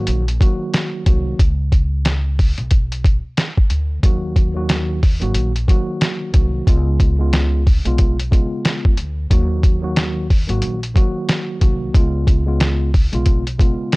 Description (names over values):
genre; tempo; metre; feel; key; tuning
hip hop, boom-bap hip-hop; 91 BPM; 4/4; swing 60% on 16ths; Eb minor; A4 = 440 Hz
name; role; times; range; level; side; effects
mellow tine electric piano; accompaniment; 0.0-14.0 s; Db3 to Gb4; -23 LUFS; equal; medium stereo tremolo, high-pass filter, low-pass filter
upright bass; bass; 0.0-13.7 s; Ab1 to Eb2; -20 LUFS; equal; tube saturation
lo-fi sampler-style drum kit; drums; 0.1-14.0 s; hi-hat, kick drum, snare drum; -15 LUFS; equal; none
room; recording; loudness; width
little or no reverb; dry, gritty hardware recording; -15 LUFS; side -24 dB against mid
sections
0.0-14.0 A section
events
none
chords
0.0 Ebm; 1.4 Bsus2; 4.0 Ebm; 6.7 Db7; 9.3 Ebm; 11.9 Db7